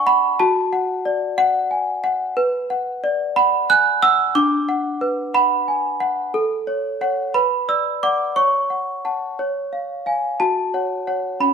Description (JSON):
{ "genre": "classical, lullaby for celesta", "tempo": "60 BPM (dotted quarters)", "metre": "6/8", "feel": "straight", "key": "F# minor", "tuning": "A4 = 441 Hz", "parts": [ { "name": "worn celesta", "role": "solo", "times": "0.0-11.5 s", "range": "C#4 to F#6", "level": "-17 LUFS", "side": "right 1 dB", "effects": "none" } ], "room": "wet stone room reverb, RT60 1.2 s", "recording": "band playing live in one room", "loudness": "-17 LUFS", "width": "side -6 dB against mid", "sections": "0.0-10.4 A section; 10.4-11.5 B section", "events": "none", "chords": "0.4 D/F#; 2.4 Bm; 4.4 Bm/D; 6.3 F#m/A; 7.4 Bm; 8.4 F#m/C#; 9.4 C#; 10.4 F#m" }